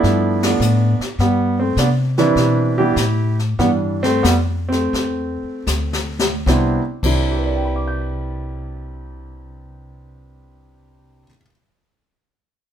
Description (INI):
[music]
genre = jazz piano trio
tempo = 73-104 BPM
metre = 4/4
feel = swing 68% on 8ths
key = C major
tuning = A4 = 436 Hz
[part]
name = warm grand piano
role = melody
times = 0.0-11.5 s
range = C3 to G6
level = -19 LUFS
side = right 2 dB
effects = none
[part]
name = upright bass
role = bass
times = 0.0-11.2 s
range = C2 to C3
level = -20 LUFS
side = left 1 dB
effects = none
[part]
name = jazz brush drum kit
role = drums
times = 0.0-7.2 s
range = brushed snare drum, crash cymbal, hi-hat, kick drum, ride cymbal, snare drum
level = -24 LUFS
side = left 3 dB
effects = none
[sound]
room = moderate studio reverb, RT60 0.7 s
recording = band playing live in one room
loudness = -16 LUFS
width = side -9 dB against mid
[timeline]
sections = 0.0-6.5 A section; 6.5-9.8 B section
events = band accent 0.3; slowing down 1.2-6.5; drum fill 5.7-6.5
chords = 0.0 G7; 1.2 Cmaj9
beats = 0.04 0.61 | 1.19 1.77 2.36 2.96 | 3.59 4.25 4.93 5.67 | 6.46 7.29 8.11 8.93